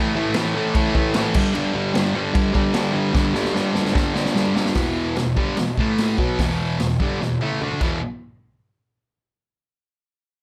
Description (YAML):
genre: garage rock duo or trio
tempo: 148 BPM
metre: 4/4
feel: straight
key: unclear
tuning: A4 = 437 Hz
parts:
  - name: thick fuzz guitar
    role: riff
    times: 0.0-8.0 s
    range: E2 to D4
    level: -23 LUFS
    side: equal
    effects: distortion
  - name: vintage drum kit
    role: drums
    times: 0.3-7.9 s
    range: crash cymbal, hi-hat, kick drum, snare drum, toms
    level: -26 LUFS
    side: equal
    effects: none
room: moderate small room reverb, RT60 0.5 s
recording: none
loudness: -21 LUFS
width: mono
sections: 0.0-4.8 A section; 4.8-8.0 B section; 8.0-9.6 C section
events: drum fill 3.2-4.8, 7.2-8.0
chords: 0.0 A5; 1.3 G5; 4.8 E5; 5.8 A5; 6.2 E5; 8.0 N.C.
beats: 0.35 0.75 1.15 | 1.55 1.95 2.35 2.75 | 3.15 3.55 3.96 4.36 | 4.76 5.17 5.57 5.98 | 6.38 6.79 7.20 7.61